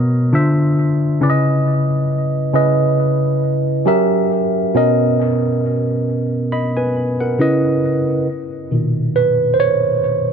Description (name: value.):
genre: R&B.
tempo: 68 BPM.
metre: 4/4.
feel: swing 56% on 16ths.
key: unclear.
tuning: A4 = 440 Hz.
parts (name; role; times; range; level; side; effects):
tine electric piano; solo; 0.0-10.3 s; A#2 to B5; -14 LUFS; right 1 dB; overdrive, phaser, analog delay.
room: light reverb, digital ambience.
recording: none.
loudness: -14 LUFS.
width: side -7 dB against mid.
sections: 0.0-8.3 A section; 8.3-10.3 B section.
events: tine electric piano solo 8.3-10.3.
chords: 0.3 Dm9; 1.2 C#m9; 3.9 F#7b9; 4.7 Bmaj9; 7.4 C#m9; 8.3 Bmaj7.